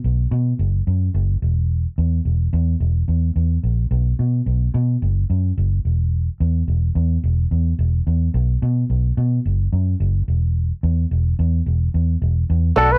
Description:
disco; 108 BPM; 4/4; straight; A4 = 440 Hz
vintage muted fingered electric bass; bass; 0.0-13.0 s; E1 to B2; -16 LUFS; equal
warm flugelhorn; melody; 12.8-13.0 s; A4 to B4; -14 LUFS; equal
clean electric guitar; accompaniment; 12.8-13.0 s; A3 to F#4; -19 LUFS; right 3 dB; wah, wide subtle chorus
little or no reverb; dry, close 1970s-style studio recording; -17 LUFS; side -30 dB against mid
0.0-12.8 A section
0.03 0.59 1.14 | 1.70 2.25 2.80 3.36 | 3.91 4.46 5.02 5.57 | 6.12 6.68 7.23 7.79 | 8.34 8.89 9.45 10.00 | 10.55 11.11 11.66 12.21 | 12.76

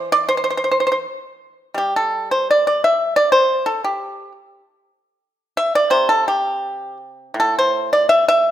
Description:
chinese traditional, Chinese solo plucked strings; 81-96 BPM; 2/4; rubato; C gong mode; A4 = 443 Hz
pipa; solo; 0.0-8.5 s; A2 to E5; -15 LUFS; equal
moderate recital hall reverb, RT60 1.4 s; -15 LUFS; side -11 dB against mid
0.0-1.8 A section; 1.8-8.5 B section
| 0.41 1.05 | 1.75 2.47 | 3.16 3.84 | 4.52 5.21 | 5.92 6.64 | 7.36 8.06

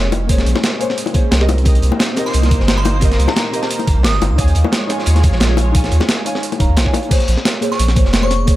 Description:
liquid drum and bass; 176 BPM; 4/4; swing 53% on 16ths; Bb dorian; A4 = 440 Hz
deep mellow chord stab; accompaniment; 0.0-8.6 s; Bb3 to Bb5; -22 LUFS; left 1 dB; chorus, cassette tape, dub echo
lush unison pad; sustained chords; 0.0-7.1 s; Ab3 to Db5; -25 LUFS; right 2 dB; chorus, phaser
warm sub bass; bass; 0.0-8.6 s; Eb1 to Eb2; -15 LUFS; equal
breakbeat sampler-style drum kit; drums; 0.1-8.6 s; crash cymbal, hi-hat, snare drum; -20 LUFS; right 1 dB
crunchy breakbeat drum kit; drums; 0.1-8.6 s; hi-hat, snare drum; -27 LUFS; equal; high-pass filter on hats, high-pass filter on snare, high-pass filter on room
bongos; percussion; 0.1-7.0 s; -22 LUFS; left 6 dB
electronic kick drum; drums; 0.3-8.6 s; -15 LUFS; equal; overdrive
glassy synth bell; melody; 2.3-4.4, 7.7-8.5 s; Bb5 to Eb6; -26 LUFS; right 2 dB; chorus, phaser, digital delay
small room ambience; -12 LUFS; side -15 dB against mid
0.0-7.1 A section; 7.1-8.6 A section
drop 0.0-7.1, 7.1-8.6
0.0 Bbm9; 1.5 Cm7; 4.4 Eb9sus4; 7.1 Bbm9
| 0.29 0.64 0.98 1.32 | 1.66 2.00 2.34 2.68 | 3.02 3.36 3.70 4.04 | 4.39 4.73 5.07 5.41 | 5.75 6.09 6.43 6.77 | 7.11 7.45 7.79 8.14 | 8.48

